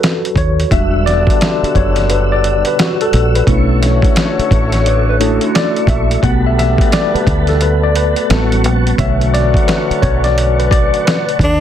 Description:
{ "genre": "R&B, neo-soul", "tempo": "87 BPM", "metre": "4/4", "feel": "swing 64% on 16ths", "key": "B minor", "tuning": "A4 = 442 Hz", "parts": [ { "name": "tine electric piano", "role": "accompaniment", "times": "0.0-11.6 s", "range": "D3 to F#5", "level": "-16 LUFS", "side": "left 1 dB", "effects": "overdrive, fast stereo tremolo" }, { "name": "dusty soul sampler-style drum kit", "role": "drums", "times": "0.0-11.6 s", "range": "hi-hat, kick drum, snare drum", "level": "-16 LUFS", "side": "equal", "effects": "overdrive" }, { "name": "deep dub fingered electric bass", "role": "bass", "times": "0.4-11.6 s", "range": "E1 to D#2", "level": "-14 LUFS", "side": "equal", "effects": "none" }, { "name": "tonewheel organ", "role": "sustained chords", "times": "0.7-11.6 s", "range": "G3 to E6", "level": "-24 LUFS", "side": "equal", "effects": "slow rotary speaker, chorus vibrato" }, { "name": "mellow horn section", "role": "stabs", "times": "0.7-11.4 s", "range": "B2 to C#5", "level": "-21 LUFS", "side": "left 7 dB", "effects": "none" }, { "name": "electric guitar at the edge of break-up", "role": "second line", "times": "4.9-6.2 s", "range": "D4 to D5", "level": "-20 LUFS", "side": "right 7 dB", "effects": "none" }, { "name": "breathy tenor saxophone", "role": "melody", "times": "11.4-11.6 s", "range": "D4", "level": "-13 LUFS", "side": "equal", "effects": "none" } ], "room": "light reverb", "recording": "dense, heavily limited modern master", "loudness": "-11 LUFS", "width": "side -10 dB against mid", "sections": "0.0-11.6 A section", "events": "tine electric piano solo 0.0-11.6", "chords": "0.0 Dmaj9; 0.7 Em9; 3.5 Bm11; 6.2 Gmaj9/B; 8.3 A13; 9.0 Bm9" }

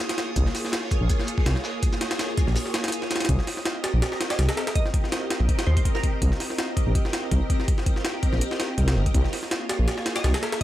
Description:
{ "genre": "drum and bass, jungle", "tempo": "164 BPM", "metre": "4/4", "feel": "swing 54% on 16ths", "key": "C phrygian", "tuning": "A4 = 440 Hz", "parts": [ { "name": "soft string machine", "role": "sustained chords", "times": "0.0-10.6 s", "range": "Bb3 to Eb5", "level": "-31 LUFS", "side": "equal", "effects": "phaser, ensemble chorus" }, { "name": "crunchy breakbeat drum kit", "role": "drums", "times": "0.0-3.2 s", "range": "hi-hat, shaker, snare drum", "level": "-36 LUFS", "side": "equal", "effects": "high-pass filter on hats, studio reverb, high-pass filter on snare, high-pass filter on perc, high-pass filter on room" }, { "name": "jungle sampler-style drum kit", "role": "drums", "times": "0.0-10.6 s", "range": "hi-hat, kick drum, snare drum", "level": "-24 LUFS", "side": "equal", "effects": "overdrive, studio reverb" }, { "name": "drifting glass-harmonics texture", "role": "texture", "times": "0.0-3.3 s", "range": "Eb6", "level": "-41 LUFS", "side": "right 5 dB", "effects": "chorus, built-in reverb" }, { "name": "detuned saw bass", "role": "bass", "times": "0.4-10.3 s", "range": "G1 to Eb2", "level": "-22 LUFS", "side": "equal", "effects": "none" }, { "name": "glassy wavetable pluck", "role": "melody", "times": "4.3-6.2, 10.2-10.6 s", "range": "Bb4 to Eb5", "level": "-35 LUFS", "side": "right 1 dB", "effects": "chorus, dub echo" } ], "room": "small room reverb", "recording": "none", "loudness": "-22 LUFS", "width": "side -14 dB against mid", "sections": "0.0-3.3 A section; 3.3-10.6 A section", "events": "drop 0.0-3.3, 3.3-10.6; kick drops out 2.6-3.3", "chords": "0.0 Bbm7; 3.3 Cm7; 9.1 Bbm7" }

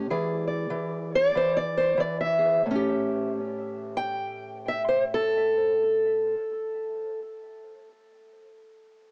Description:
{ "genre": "acoustic country blues, solo or duo", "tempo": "87-100 BPM", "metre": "4/4", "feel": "swing 61% on 8ths", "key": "A mixolydian", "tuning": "A4 = 440 Hz", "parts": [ { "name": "fingerpicked steel-string acoustic guitar", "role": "solo", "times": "0.0-7.2 s", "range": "A2 to G5", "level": "-26 LUFS", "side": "equal", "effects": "analog delay" } ], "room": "moderate spring reverb, RT60 1.7 s, studio reverb", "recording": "cassette tape, small speaker sound", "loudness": "-26 LUFS", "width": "mono", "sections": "0.0-2.7 A section; 2.7-5.4 B section", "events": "slowing down 0.0-2.7", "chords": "0.1 E7; 2.7 A7" }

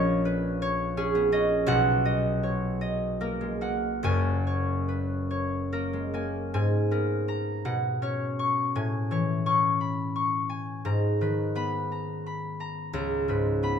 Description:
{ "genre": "classical, solo harp piece", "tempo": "47-59 BPM (dotted quarters)", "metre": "6/8", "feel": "rubato", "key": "G# minor", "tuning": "A4 = 440 Hz", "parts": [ { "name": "concert harp", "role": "solo", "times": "0.0-13.8 s", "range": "F#1 to C#6", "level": "-25 LUFS", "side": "equal", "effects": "none" } ], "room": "moderate stone room reverb, RT60 1.3 s", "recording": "minimal, uncompressed stereo recording", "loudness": "-25 LUFS", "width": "side -7 dB against mid", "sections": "0.0-6.5 A section; 6.5-13.8 B section", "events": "none", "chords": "0.0 C#add9/A#; 1.7 Bmaj7; 4.0 F#add9; 6.5 G#madd9; 7.7 Bsus2; 8.7 Amaj7; 10.9 G#madd9; 12.9 C#5" }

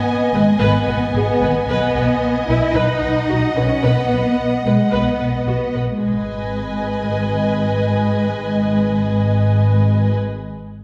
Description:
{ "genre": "cinematic", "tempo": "111 BPM", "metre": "4/4", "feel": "straight", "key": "G# minor", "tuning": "A4 = 441 Hz", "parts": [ { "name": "warm symphonic violin section", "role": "melody", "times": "0.0-10.2 s", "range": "F#5 to G#5", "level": "-31 LUFS", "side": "equal", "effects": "none" }, { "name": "warm symphonic violin section", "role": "second line", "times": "0.0-10.2 s", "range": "D#5", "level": "-27 LUFS", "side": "equal", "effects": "none" }, { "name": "warm symphonic cello section", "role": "bass", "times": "0.0-10.2 s", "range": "G#3 to E4", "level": "-22 LUFS", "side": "equal", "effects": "none" }, { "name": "rich symphonic viola section", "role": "accompaniment", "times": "0.3-10.2 s", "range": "F#4 to B4", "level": "-28 LUFS", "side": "equal", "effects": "none" }, { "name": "warm symphonic double bass section", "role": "bass", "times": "0.3-10.2 s", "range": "G#1 to B1", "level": "-22 LUFS", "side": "equal", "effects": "none" } ], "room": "wet scoring stage reverb, RT60 1.6 s", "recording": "heard from further back in the room", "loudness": "-18 LUFS", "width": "mono", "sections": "0.0-6.0 A section; 6.0-10.3 B section", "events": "none", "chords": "0.0 G#m; 1.7 B; 6.0 G#m" }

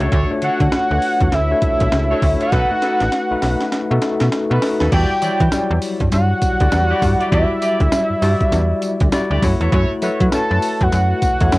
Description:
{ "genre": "R&B, new jack swing", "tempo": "100 BPM", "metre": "4/4", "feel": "swing 61% on 16ths", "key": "E dorian", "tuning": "A4 = 439 Hz", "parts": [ { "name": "tine electric piano", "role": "accompaniment", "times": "0.0-11.6 s", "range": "F#3 to D5", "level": "-22 LUFS", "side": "left 3 dB", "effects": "medium tremolo, cassette tape" }, { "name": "warm horn section", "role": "stabs", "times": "0.0-10.2 s", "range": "D4 to D5", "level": "-26 LUFS", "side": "right 1 dB", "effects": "cassette tape" }, { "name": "slap-like FM bass", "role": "bass", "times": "0.0-11.6 s", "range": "A1 to F#3", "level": "-17 LUFS", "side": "equal", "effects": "none" }, { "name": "breakbeat sampler-style drum kit", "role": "drums", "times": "0.0-11.6 s", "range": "crash cymbal, hi-hat, kick drum, snare drum, tambourine", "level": "-20 LUFS", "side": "equal", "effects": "cassette tape" }, { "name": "fat analog lead", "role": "melody", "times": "0.4-11.6 s", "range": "E5 to A5", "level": "-20 LUFS", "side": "equal", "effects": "cassette tape" } ], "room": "light reverb", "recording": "home recording on cassette", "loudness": "-14 LUFS", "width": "side -20 dB against mid", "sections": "0.0-4.9 A section; 4.9-11.6 B section", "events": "drum fill 2.5-4.9", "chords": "0.0 Dmaj7; 2.5 B7; 4.9 Em9; 9.4 F#m7" }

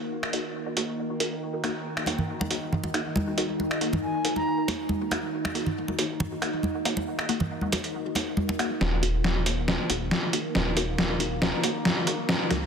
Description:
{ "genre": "deep dubstep", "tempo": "138 BPM", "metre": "4/4", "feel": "swing 53% on 16ths, half-time", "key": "Eb minor", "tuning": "A4 = 443 Hz", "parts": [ { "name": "overtone-sweeping drone", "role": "sustained chords", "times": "0.0-12.7 s", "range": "Eb3 to Eb4", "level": "-32 LUFS", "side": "equal", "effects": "chorus, built-in reverb" }, { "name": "trip hop sampler-style drum kit", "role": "drums", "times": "0.2-12.6 s", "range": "finger snaps, hi-hat, snare drum", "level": "-28 LUFS", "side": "equal", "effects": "overdrive" }, { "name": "filtered dub chord stab", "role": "stabs", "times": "0.3-12.6 s", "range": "Bb3 to Gb4", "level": "-33 LUFS", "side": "left 1 dB", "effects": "phaser, dub echo" }, { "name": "congas", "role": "percussion", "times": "2.1-8.6 s", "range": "none", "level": "-30 LUFS", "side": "right 1 dB", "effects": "dub echo" }, { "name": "bright reedy ney", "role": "melody", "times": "3.7-4.7 s", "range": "Eb5 to Bb5", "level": "-34 LUFS", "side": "equal", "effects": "dub echo" }, { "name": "soft dub sub bass", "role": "bass", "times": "8.8-12.7 s", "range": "Eb1 to Db2", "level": "-29 LUFS", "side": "equal", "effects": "tube saturation" } ], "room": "moderate lush hall reverb, RT60 2.5 s", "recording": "dense, heavily limited modern master, high-pass filter", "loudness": "-25 LUFS", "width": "side -6 dB against mid", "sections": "0.0-8.8 A section; 8.8-12.7 B section", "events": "build-up 8.8-12.7; drum fill 8.8-12.7; filter sweep on synth stab 8.8-12.7; filter sweep 8.8-12.7", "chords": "0.0 Ebm" }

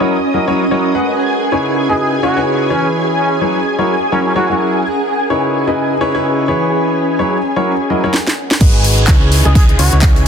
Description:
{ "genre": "piano house", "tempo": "127 BPM", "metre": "4/4", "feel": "swing 58% on 16ths", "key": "unclear", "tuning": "A4 = 440 Hz", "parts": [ { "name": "analog string pad", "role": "sustained chords", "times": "0.0-10.3 s", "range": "G#4 to D#6", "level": "-20 LUFS", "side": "right 1 dB", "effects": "ensemble chorus, sidechain pumping" }, { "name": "clear upright piano", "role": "riff", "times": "0.0-10.2 s", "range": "C#3 to F#5", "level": "-16 LUFS", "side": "left 1 dB", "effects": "sidechain pumping, ping-pong delay" }, { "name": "granular cloud pad", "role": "texture", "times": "0.0-8.1 s", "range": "C#4 to B5", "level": "-20 LUFS", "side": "right 1 dB", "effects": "built-in reverb, sidechain pumping" }, { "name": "trumpet with plunger mute", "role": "melody", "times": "1.9-4.6, 9.5-10.0 s", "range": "C#4 to G#4", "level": "-20 LUFS", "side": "equal", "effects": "ping-pong delay" }, { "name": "house drum kit", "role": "drums", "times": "8.1-10.2 s", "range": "crash cymbal, handclaps, hi-hat, rim click, snare drum", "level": "-17 LUFS", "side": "equal", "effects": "overdrive" }, { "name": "hollow-body short-scale fingered electric bass", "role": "bass", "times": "8.6-10.2 s", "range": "G#1 to C#2", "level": "-13 LUFS", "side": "equal", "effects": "sidechain pumping" }, { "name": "electronic kick drum", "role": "drums", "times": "8.6-10.1 s", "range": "none", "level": "-10 LUFS", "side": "equal", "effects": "overdrive" }, { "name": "oversized low-tuned drum kit", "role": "drums", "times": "8.6-10.3 s", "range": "hi-hat, snare drum", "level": "-24 LUFS", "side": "right 2 dB", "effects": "high-pass filter on hats, high-pass filter on snare, high-pass filter on room" }, { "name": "downlifter", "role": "sound effects", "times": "8.6-10.3 s", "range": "none", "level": "-23 LUFS", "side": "equal", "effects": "none" } ], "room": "moderate lush hall reverb, RT60 1.8 s, small room ambience", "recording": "dense, heavily limited modern master", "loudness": "-11 LUFS", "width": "side -7 dB against mid", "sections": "0.0-8.6 A section; 8.6-10.3 B section", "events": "filter sweep on analog synth pad 0.0-8.6; drum fill 8.1-8.6; drop 8.6-10.3", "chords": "0.0 F#7; 1.0 C#m9; 2.7 E6; 3.6 F#7; 4.8 C#m9; 6.5 E6; 7.4 F#7; 8.6 G#m7; 9.3 C#m9" }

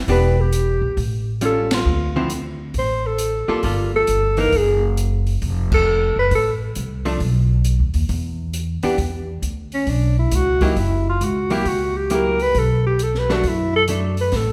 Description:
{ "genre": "jazz, small-group swing and bop", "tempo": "135 BPM", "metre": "4/4", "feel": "swing 66% on 8ths", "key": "E minor from 9.0 s", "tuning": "A4 = 440 Hz", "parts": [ { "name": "upright bass", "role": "bass", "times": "0.0-14.5 s", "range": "E1 to F#2", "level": "-23 LUFS", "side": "equal", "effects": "none" }, { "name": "mellow alto saxophone", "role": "melody", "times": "0.1-6.5, 9.7-14.5 s", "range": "C#4 to C5", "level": "-22 LUFS", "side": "equal", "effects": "none" }, { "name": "archtop guitar, miked and amplified", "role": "accompaniment", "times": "0.1-14.2 s", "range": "D3 to A4", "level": "-26 LUFS", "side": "equal", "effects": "none" }, { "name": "open jazz drum kit", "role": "drums", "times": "0.1-14.5 s", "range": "crash cymbal, hi-hat, kick drum, ride cymbal, snare drum", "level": "-29 LUFS", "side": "equal", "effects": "none" } ], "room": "moderate recital hall reverb, RT60 1.4 s", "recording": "recorded in a church or concert hall", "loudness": "-20 LUFS", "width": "mono", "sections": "0.0-9.0 A section; 9.0-14.5 B section", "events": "band accent 1.6, 5.6", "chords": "0.1 Em7; 1.0 Aaug7; 1.9 Dm; 3.6 Gm9; 4.5 F#sus2; 5.4 F; 7.2 Bm; 8.1 Em7; 9.0 E7(no3); 10.8 F#7b9; 12.6 Bm7" }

